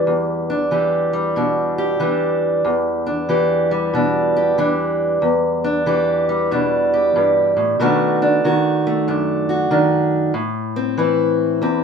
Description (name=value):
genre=blues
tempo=94 BPM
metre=4/4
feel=swing 65% on 8ths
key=E minor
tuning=A4 = 440 Hz
part: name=fingerpicked steel-string acoustic guitar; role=solo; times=0.0-11.8 s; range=E2 to G4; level=-16 LUFS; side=equal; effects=none
room=moderate studio reverb, RT60 0.5 s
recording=minimal, uncompressed stereo recording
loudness=-16 LUFS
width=side -6 dB against mid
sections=0.0-11.8 A section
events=none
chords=0.0 Em7; 7.8 B7#9; 10.3 Am